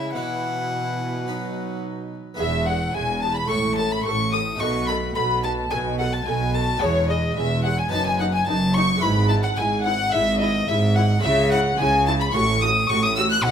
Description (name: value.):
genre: classical, baroque-style concerto movement with solo episodes.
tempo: 108 BPM.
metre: 4/4.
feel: straight.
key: E major.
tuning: A4 = 440 Hz.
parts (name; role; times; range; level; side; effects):
rich violin; melody; 0.0-13.5 s; C#5 to F#6; -26 LUFS; left 2 dB; none.
warm chamber violin section; melody; 0.0-13.5 s; G#4 to F#6; -28 LUFS; left 3 dB; none.
warm chamber violin section; second line; 0.0-13.5 s; D#4 to F#6; -28 LUFS; left 2 dB; none.
dark chamber viola section; accompaniment; 0.0-13.5 s; E3 to A4; -32 LUFS; equal; none.
harpsichord; accompaniment; 0.0-13.5 s; E2 to C#5; -31 LUFS; equal; none.
warm chamber cello section; bass; 0.0-13.5 s; E2 to C#3; -25 LUFS; right 2 dB; none.
rich chamber double bass section; bass; 2.4-13.5 s; E1 to C#2; -27 LUFS; right 2 dB; none.
room: light reverb.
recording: close, detailed microphones.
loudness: -19 LUFS.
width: side -8 dB against mid.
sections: 0.0-2.4 A section; 2.4-13.5 B section.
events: none.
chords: 0.1 Bsus4; 1.3 B; 2.4 E; 3.5 A5; 4.6 B7; 6.8 E; 7.9 B/F#; 9.0 E/G#; 11.2 C#m; 12.3 F#m/A.